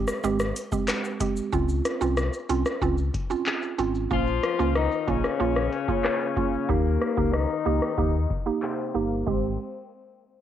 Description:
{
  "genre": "dancehall",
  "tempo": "93 BPM",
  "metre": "4/4",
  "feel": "straight",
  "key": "Ab major",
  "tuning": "A4 = 440 Hz",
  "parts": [
    { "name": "mallet-like synth pluck", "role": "accompaniment", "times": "0.0-9.5 s", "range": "Ab3 to G4", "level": "-27 LUFS", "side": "right 6 dB", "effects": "chorus" },
    { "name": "sub bass with octave", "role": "bass", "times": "0.0-9.6 s", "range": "G1 to Eb2", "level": "-27 LUFS", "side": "left 2 dB", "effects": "none" },
    { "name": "booming analog drum machine", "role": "drums", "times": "0.1-9.5 s", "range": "crash cymbal, handclaps, hi-hat, kick drum, rim click, shaker", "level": "-28 LUFS", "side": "left 2 dB", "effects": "none" },
    { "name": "mellow horn section", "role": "second line", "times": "4.1-9.6 s", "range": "C3 to F4", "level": "-28 LUFS", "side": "left 9 dB", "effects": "analog delay" }
  ],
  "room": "light reverb, digital ambience",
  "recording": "home recording on cassette, low-pass filter",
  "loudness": "-23 LUFS",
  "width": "side -10 dB against mid",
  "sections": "0.0-9.3 A section; 9.3-10.4 B section",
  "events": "filter sweep 0.0-9.3",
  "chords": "0.0 Abmaj7; 1.5 Dbmaj7; 4.1 Bbm; 6.7 Eb; 9.3 Abmaj7"
}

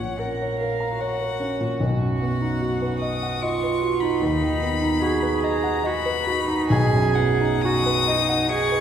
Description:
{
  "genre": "classical, slow romantic movement for piano trio",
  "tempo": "61-77 BPM",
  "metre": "3/4",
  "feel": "rubato",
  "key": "unclear",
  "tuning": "A4 = 440 Hz",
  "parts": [
    { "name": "rich violin", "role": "melody", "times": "0.0-8.8 s", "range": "E#5 to D#6", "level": "-27 LUFS", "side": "left 7 dB", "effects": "none" },
    { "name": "warm cello", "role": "second line", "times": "0.0-8.8 s", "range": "C#4 to A#4", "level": "-26 LUFS", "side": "right 5 dB", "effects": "none" },
    { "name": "warm grand piano", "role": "accompaniment", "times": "0.0-8.8 s", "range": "A#1 to A#5", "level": "-22 LUFS", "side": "equal", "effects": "none" }
  ],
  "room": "wet church reverb, RT60 2.6 s",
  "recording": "recorded in a church or concert hall",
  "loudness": "-20 LUFS",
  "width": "side -9 dB against mid",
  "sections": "0.0-8.8 A section",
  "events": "none",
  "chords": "0.0 F#/A#; 1.8 B; 4.2 B/D#; 6.7 B"
}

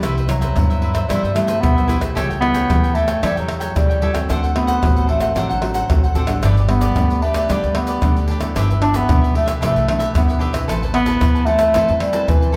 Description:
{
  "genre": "samba and choro",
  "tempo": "113 BPM",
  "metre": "4/4",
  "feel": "straight",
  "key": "unclear",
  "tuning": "A4 = 440 Hz",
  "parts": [
    { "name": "cavaquinho", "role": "accompaniment", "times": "0.0-12.6 s", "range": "D4 to A5", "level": "-29 LUFS", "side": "equal", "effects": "none" },
    { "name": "nylon-string guitar", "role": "accompaniment", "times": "0.0-12.6 s", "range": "G2 to B4", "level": "-29 LUFS", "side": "equal", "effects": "none" },
    { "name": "upright bass", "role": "bass", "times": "0.0-12.6 s", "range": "G1 to G2", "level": "-24 LUFS", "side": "equal", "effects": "none" },
    { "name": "egg shaker, surdo, pandeiro and tamborim", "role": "percussion", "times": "0.0-12.6 s", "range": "none", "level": "-22 LUFS", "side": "equal", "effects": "none" },
    { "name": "clear bass clarinet", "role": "melody", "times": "0.3-12.6 s", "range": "E3 to D4", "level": "-22 LUFS", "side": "equal", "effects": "none" }
  ],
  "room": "wet large studio reverb, RT60 0.9 s",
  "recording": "band playing live in one room",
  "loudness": "-17 LUFS",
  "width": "mono",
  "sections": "0.0-12.6 A section",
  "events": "none",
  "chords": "0.0 Cmaj7; 2.2 A7/C#; 4.3 D7; 6.4 G; 8.6 Em7/G; 10.7 Amadd9"
}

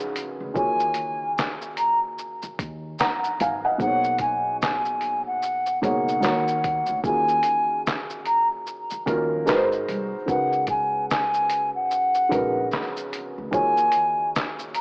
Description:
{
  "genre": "lo-fi hip hop",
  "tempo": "74 BPM",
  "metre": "4/4",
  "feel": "swing 60% on 16ths",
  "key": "Eb minor",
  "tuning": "A4 = 440 Hz",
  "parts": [
    { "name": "felt-muted upright piano", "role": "accompaniment", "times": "0.0-14.8 s", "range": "B2 to Bb5", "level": "-26 LUFS", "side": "right 1 dB", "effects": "cassette tape" },
    { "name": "lo-fi sampler-style drum kit", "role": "drums", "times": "0.0-14.8 s", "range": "handclaps, hi-hat, kick drum, shaker, snare drum", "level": "-28 LUFS", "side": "equal", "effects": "cassette tape" },
    { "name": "upright bass", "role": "bass", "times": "0.4-13.9 s", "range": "Ab1 to Eb2", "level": "-37 LUFS", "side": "equal", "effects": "none" },
    { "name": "mellow hollow silver concert flute", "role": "melody", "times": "0.6-14.8 s", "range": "F#5 to Bb5", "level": "-22 LUFS", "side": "equal", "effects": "cassette tape, analog delay" }
  ],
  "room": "moderate spring reverb, RT60 2.3 s",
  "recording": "home recording on cassette, small speaker sound",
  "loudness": "-21 LUFS",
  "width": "side -30 dB against mid",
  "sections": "0.0-7.0 A section; 7.0-14.8 A section",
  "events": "none",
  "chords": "0.0 Db13sus4; 0.6 Ebm11; 3.8 Bmaj13; 6.2 Ebm7; 7.0 Ebm11; 9.5 Ab7; 10.3 Db13sus4; 13.5 Ebm11"
}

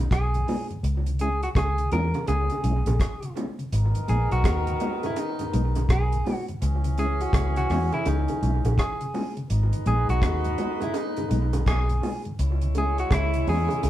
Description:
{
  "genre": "roots reggae",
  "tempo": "83 BPM",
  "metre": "4/4",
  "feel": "swing 62% on 16ths",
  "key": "G# minor",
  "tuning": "A4 = 441 Hz",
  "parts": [
    { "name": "clean electric guitar", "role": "melody", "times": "0.0-13.9 s", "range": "D#4 to A#4", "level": "-29 LUFS", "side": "equal", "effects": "none" },
    { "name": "mellow tonewheel organ", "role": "accompaniment", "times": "0.0-13.8 s", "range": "G#2 to E4", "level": "-33 LUFS", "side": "left 2 dB", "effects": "chorus vibrato" },
    { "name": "vintage muted fingered electric bass", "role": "bass", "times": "0.0-13.9 s", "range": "G#1 to E2", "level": "-24 LUFS", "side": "equal", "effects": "none" },
    { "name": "deep reggae drum kit", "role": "drums", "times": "0.1-13.9 s", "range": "hi-hat, kick drum, rim click", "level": "-27 LUFS", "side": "equal", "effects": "none" },
    { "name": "bongos", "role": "percussion", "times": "0.5-13.9 s", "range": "none", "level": "-34 LUFS", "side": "right 2 dB", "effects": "tape echo" },
    { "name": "mellow horn section", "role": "second line", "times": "3.7-13.9 s", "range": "D#3 to C#5", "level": "-32 LUFS", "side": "equal", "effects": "none" }
  ],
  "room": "wet studio reverb, RT60 0.7 s",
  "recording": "band playing live in one room",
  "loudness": "-22 LUFS",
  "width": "side -13 dB against mid",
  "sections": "0.0-13.9 A section",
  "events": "none",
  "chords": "0.0 G#m; 0.8 C#m; 3.7 G#m; 6.6 C#m; 9.5 G#m; 12.4 C#m"
}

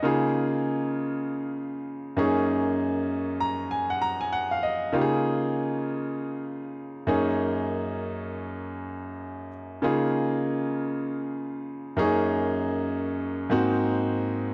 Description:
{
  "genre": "R&B",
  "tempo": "98 BPM",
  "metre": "4/4",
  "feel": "swing 62% on 16ths",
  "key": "Db major",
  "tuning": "A4 = 441 Hz",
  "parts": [
    { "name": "clear grand piano", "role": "solo", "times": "0.0-14.5 s", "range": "Gb2 to Bb5", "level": "-28 LUFS", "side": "equal", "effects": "none" }
  ],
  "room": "small room reverb",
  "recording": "dry, close 1970s-style studio recording",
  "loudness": "-27 LUFS",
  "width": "mono",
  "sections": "0.0-14.5 A section",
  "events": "grand piano fill 3.1-4.9",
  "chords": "0.0 Db6; 2.2 Gb6; 4.9 Db6; 7.1 Gb6; 9.8 Db6; 12.0 Gb6; 13.5 Ab7"
}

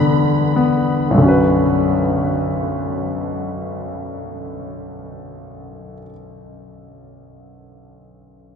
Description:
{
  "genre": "pop",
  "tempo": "free time",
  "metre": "none",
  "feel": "none",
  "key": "B minor",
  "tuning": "A4 = 441 Hz",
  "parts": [
    { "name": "clear concert grand piano", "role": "accompaniment", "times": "0.0-8.6 s", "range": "B1 to B4", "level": "-17 LUFS", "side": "left 1 dB", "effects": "none" }
  ],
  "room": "wet huge ambient reverb, RT60 8.2 s",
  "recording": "dreamy mix soaked in reverb",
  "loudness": "-15 LUFS",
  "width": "side -7 dB against mid",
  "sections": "0.0-1.2 A section; 1.2-6.3 B section",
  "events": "slowing down 0.0-1.2",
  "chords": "0.0 Em7; 1.2 Bmadd9"
}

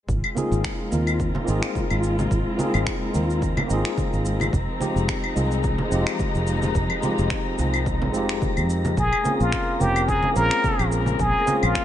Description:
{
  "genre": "sunset chillout",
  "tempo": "108 BPM",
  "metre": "4/4",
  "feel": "swing 55% on 16ths",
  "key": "unclear",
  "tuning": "A4 = 439 Hz",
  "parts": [
    { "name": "dark chamber string section", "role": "sustained chords", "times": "0.1-11.8 s", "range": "F3 to F4", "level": "-30 LUFS", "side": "left 2 dB", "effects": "none" },
    { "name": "fingered electric bass", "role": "bass", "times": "0.1-11.7 s", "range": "F1 to F2", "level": "-24 LUFS", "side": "equal", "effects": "none" },
    { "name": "electronic cabasa, claves and finger snaps", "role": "drums", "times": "0.1-11.8 s", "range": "none", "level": "-30 LUFS", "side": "left 1 dB", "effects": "none" },
    { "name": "electronic kick drum", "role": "drums", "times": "0.1-11.8 s", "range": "none", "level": "-28 LUFS", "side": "equal", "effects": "none" },
    { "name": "wind-like tuned noise texture", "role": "texture", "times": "0.5-11.8 s", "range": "Bb4 to Bb5", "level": "-35 LUFS", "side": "left 1 dB", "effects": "built-in reverb" },
    { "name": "tine electric piano", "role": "accompaniment", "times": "0.4-11.8 s", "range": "Ab3 to Bb4", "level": "-27 LUFS", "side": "left 1 dB", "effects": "auto-pan, ping-pong delay" },
    { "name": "congas", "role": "percussion", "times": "0.4-11.6 s", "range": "none", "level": "-30 LUFS", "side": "right 1 dB", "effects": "none" },
    { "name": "trumpet with plunger mute", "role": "melody", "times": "9.0-11.8 s", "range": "F4 to Bb4", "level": "-22 LUFS", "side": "left 1 dB", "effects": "ping-pong delay" }
  ],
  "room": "moderate recital hall reverb, RT60 1.5 s, digital ambience",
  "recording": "nothing above 10.4 kHz",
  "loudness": "-20 LUFS",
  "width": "side -11 dB against mid",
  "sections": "0.1-11.8 A section",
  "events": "none",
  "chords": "0.1 Ab69; 4.5 Fm7; 9.0 Bbm9"
}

